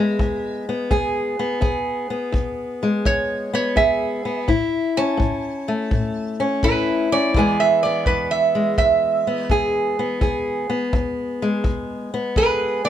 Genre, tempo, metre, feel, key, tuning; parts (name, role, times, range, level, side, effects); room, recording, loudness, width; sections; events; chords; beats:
acoustic country blues, solo or duo; 84 BPM; 4/4; swing 68% on 8ths; E major; A4 = 440 Hz
metal-body resonator slide guitar; melody; 0.0-12.9 s; B4 to A5; -20 LUFS; right 4 dB; plate reverb
fingerpicked old ladder-braced acoustic guitar; accompaniment; 0.0-12.9 s; E2 to G#4; -21 LUFS; left 2 dB
kick drum; drums; 0.2-12.6 s; -23 LUFS; left 1 dB
light reverb; -18 LUFS; side -10 dB against mid
0.0-12.9 A section
resonator guitar played with a steel bar solo 0.0-12.9
0.0 E; 4.5 A; 7.3 E
0.19 0.91 | 1.62 2.33 3.05 3.76 | 4.48 5.19 5.91 6.63 | 7.34 8.06 8.77 9.49 | 10.21 10.92 11.64 12.36